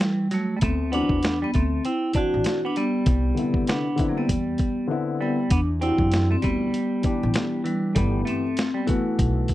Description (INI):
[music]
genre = hip hop, jazz-hop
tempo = 98 BPM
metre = 4/4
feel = swing 62% on 16ths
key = E minor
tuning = A4 = 439 Hz
[part]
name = vibraphone with medium hard mallets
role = melody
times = 0.0-9.5 s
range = G3 to F#4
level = -25 LUFS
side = equal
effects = none
[part]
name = semi-hollow electric guitar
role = second line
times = 0.0-9.5 s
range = E3 to D4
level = -31 LUFS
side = right 4 dB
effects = none
[part]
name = boom bap sampler-style drum kit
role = drums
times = 0.0-9.5 s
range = hi-hat, kick drum, snare drum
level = -25 LUFS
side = equal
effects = none
[part]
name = upright bass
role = bass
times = 0.6-9.4 s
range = G1 to F#2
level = -25 LUFS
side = equal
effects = none
[part]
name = dark upright piano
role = accompaniment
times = 0.9-9.5 s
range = C3 to G4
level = -28 LUFS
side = left 4 dB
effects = none
[sound]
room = little or no reverb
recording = dry, close 1970s-style studio recording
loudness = -21 LUFS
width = side -15 dB against mid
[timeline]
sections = 0.0-9.5 A section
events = drums muted 4.9-5.5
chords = 0.0 Gsus2; 0.6 D9; 3.1 Cmaj9; 5.5 Em9; 8.0 G69